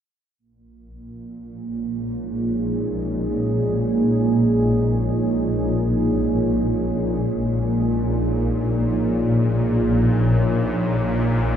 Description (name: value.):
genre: dark ambient drone.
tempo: free time.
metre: none.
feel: none.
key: Bb minor.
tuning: A4 = 440 Hz.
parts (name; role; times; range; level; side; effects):
deep dark ambient pad; sustained chords; 1.3-11.6 s; Bb3 to Db5; -22 LUFS; right 2 dB; chorus, built-in reverb.
swarming drone; drone; 1.6-11.6 s; Bb1 to Bb2; -21 LUFS; left 1 dB; built-in reverb.
room: wet lush hall reverb, RT60 2.5 s.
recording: dreamy mix soaked in reverb.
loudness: -18 LUFS.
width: side -9 dB against mid.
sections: 0.4-11.6 A section.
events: none.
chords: 0.4 Bbm7.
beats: free time.